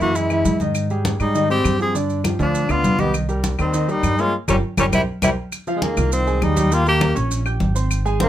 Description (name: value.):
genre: Afro-Cuban jazz.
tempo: 201 BPM.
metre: 4/4.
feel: straight.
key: C minor.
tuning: A4 = 435 Hz.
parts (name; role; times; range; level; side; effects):
breathy tenor saxophone; melody; 0.0-8.3 s; Ab3 to Ab4; -21 LUFS; equal; none.
growling trombone; second line; 0.0-8.3 s; C3 to C4; -26 LUFS; left 5 dB; none.
warm baby grand piano; accompaniment; 0.0-8.3 s; D3 to G6; -24 LUFS; right 2 dB; none.
upright bass; bass; 0.0-8.3 s; G1 to G#2; -22 LUFS; equal; none.
congas; percussion; 0.0-8.3 s; none; -25 LUFS; left 1 dB; none.
maracas; percussion; 0.0-8.3 s; none; -33 LUFS; right 7 dB; none.
claves; percussion; 0.3-8.1 s; none; -29 LUFS; left 6 dB; none.
room: light reverb.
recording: close, detailed microphones.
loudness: -17 LUFS.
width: side -12 dB against mid.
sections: 0.0-5.5 A section; 5.5-8.3 B section.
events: band accent 4.3-5.5.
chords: 0.2 F#sus2; 0.8 Abmaj7; 1.9 G7; 3.1 Cm7; 4.3 Gm7b5; 4.9 C7; 5.5 Fm9; 6.7 Eb7.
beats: 0.15 0.45 | 0.75 1.05 1.35 1.65 | 1.95 2.24 2.54 2.84 | 3.14 3.44 3.74 4.03 | 4.33 4.63 4.93 5.23 | 5.53 5.82 6.12 6.42 | 6.72 7.02 7.32 7.61 | 7.91 8.21.